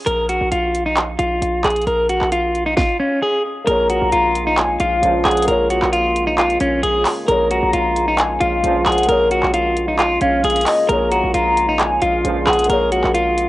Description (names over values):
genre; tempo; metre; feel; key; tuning
hip hop, trap; 133 BPM; 4/4; half-time; Bb minor; A4 = 441 Hz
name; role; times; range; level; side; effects
clean electric guitar; melody; 0.1-13.5 s; Db4 to Bb4; -17 LUFS; equal; spring reverb, cassette tape, tape echo
hard-hitting 808-style bass; bass; 0.1-13.5 s; Bb1; -25 LUFS; equal; none
trap drum kit; drums; 0.1-13.5 s; handclaps, hi-hat, kick drum, snare drum; -20 LUFS; right 1 dB; cassette tape
dark concert grand piano; accompaniment; 3.6-13.5 s; Bb3 to Db5; -25 LUFS; left 2 dB; cassette tape
warm velvety synth lead; second line; 3.7-12.7 s; Eb5 to Bb5; -20 LUFS; left 2 dB; chorus, cassette tape, tape echo
mellow French horn section; sustained chords; 3.7-13.5 s; Db3 to F4; -27 LUFS; right 1 dB; cassette tape
warm brass ensemble; stabs; 5.0-5.5, 8.6-9.1, 12.2-12.7 s; Db2 to F3; -24 LUFS; right 4 dB; cassette tape, tape echo
room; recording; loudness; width
light reverb; home recording on cassette, nothing above 10.7 kHz; -14 LUFS; side -17 dB against mid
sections
0.0-3.7 A section; 3.7-13.5 B section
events
none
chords
0.0 Bb5; 3.7 Bbm7